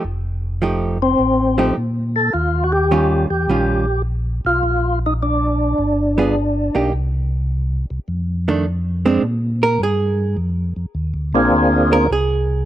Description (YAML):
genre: soul jazz organ trio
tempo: 104 BPM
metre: 4/4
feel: swing 68% on 8ths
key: Bb mixolydian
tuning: A4 = 440 Hz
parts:
  - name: hollow-body jazz guitar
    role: accompaniment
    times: 0.0-12.7 s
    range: Eb3 to Bb4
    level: -18 LUFS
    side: right 3 dB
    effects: none
  - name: mellow tonewheel organ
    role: bass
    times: 0.0-12.7 s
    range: F1 to Bb2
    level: -20 LUFS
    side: equal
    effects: chorus vibrato, slow rotary speaker
  - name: percussive tonewheel organ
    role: melody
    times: 1.0-6.9, 11.3-12.1 s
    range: Bb3 to A4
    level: -17 LUFS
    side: left 1 dB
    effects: slow rotary speaker, overdrive, chorus vibrato
room: digital ambience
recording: dry, close 1970s-style studio recording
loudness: -16 LUFS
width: side -12 dB against mid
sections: 0.0-9.2 A section; 9.2-12.7 B section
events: hollow-body jazz guitar solo 9.2-12.7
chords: 0.0 F9; 2.3 Eb9; 4.6 Bb; 5.8 G7b9; 6.9 N.C.; 8.1 F6; 9.2 Bb9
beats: | 0.04 0.61 1.19 1.76 | 2.34 2.91 3.49 4.06 | 4.63 5.21 5.78 6.36 | 6.93 7.51 8.08 8.66 | 9.23 9.81 10.38 10.96 | 11.53 12.11